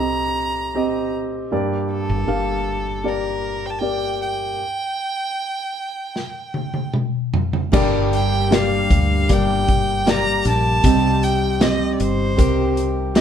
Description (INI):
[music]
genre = pop ballad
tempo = 78 BPM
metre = 4/4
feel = straight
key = G minor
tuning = A4 = 439 Hz
[part]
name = rich violin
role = melody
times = 0.0-12.8 s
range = A4 to Bb5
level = -24 LUFS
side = right 1 dB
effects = none
[part]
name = warm concert grand piano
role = accompaniment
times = 0.0-13.2 s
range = G2 to F5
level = -21 LUFS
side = equal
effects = none
[part]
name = woody fretless electric bass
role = bass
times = 0.0-13.2 s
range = G1 to D2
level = -24 LUFS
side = equal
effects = none
[part]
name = modern studio drum kit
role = drums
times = 6.2-13.2 s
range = crash cymbal, hi-hat, kick drum, snare drum, toms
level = -20 LUFS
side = equal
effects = none
[part]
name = picked plugged-in steel-string acoustic guitar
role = arpeggios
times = 7.7-13.2 s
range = G2 to G4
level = -25 LUFS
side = left 3 dB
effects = none
[sound]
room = light reverb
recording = band playing live in one room, lossy compression artefacts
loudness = -18 LUFS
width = side -9 dB against mid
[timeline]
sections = 0.0-7.7 A section; 7.7-13.2 B section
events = drum fill 6.2-7.7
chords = 0.0 Cm; 1.5 Gm; 4.6 N.C.; 7.7 Gm; 10.8 Cm